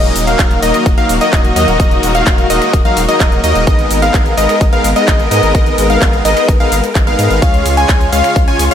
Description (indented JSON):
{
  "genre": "EDM, festival progressive house",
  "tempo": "128 BPM",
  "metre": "4/4",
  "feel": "straight",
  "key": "Eb minor",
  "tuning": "A4 = 440 Hz",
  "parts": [
    { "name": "dark studio string section", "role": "sustained chords", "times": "0.0-8.7 s", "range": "Db3 to Bb4", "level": "-20 LUFS", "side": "left 4 dB", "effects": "sidechain pumping" },
    { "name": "plucky unison lead", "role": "arpeggios", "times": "0.0-8.7 s", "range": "Eb5 to Ab5", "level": "-16 LUFS", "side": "left 1 dB", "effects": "sidechain pumping, dub echo" },
    { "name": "supersaw chords", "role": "riff", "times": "0.0-8.7 s", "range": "Gb3 to Ab5", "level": "-15 LUFS", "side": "equal", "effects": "sidechain pumping, dub echo" },
    { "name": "saturated sub bass", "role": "bass", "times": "0.0-8.7 s", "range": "Eb1 to Ab2", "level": "-17 LUFS", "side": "equal", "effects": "sidechain pumping" },
    { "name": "big-room dance drum kit", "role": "drums", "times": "0.0-8.7 s", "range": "finger snaps, handclaps, hi-hat, ride cymbal, shaker", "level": "-21 LUFS", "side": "equal", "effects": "none" },
    { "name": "electronic kick drum", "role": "drums", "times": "0.4-8.5 s", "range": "none", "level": "-12 LUFS", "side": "equal", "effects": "none" }
  ],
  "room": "light reverb",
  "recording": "none",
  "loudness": "-9 LUFS",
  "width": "side -9 dB against mid",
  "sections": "0.0-8.7 A section",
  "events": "none",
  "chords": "0.0 Ebm; 3.7 Abmadd9; 7.4 Db",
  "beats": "0.39 0.86 1.33 | 1.80 2.27 2.73 3.20 | 3.67 4.14 4.61 5.08 | 5.55 6.02 6.49 6.95 | 7.42 7.89 8.36"
}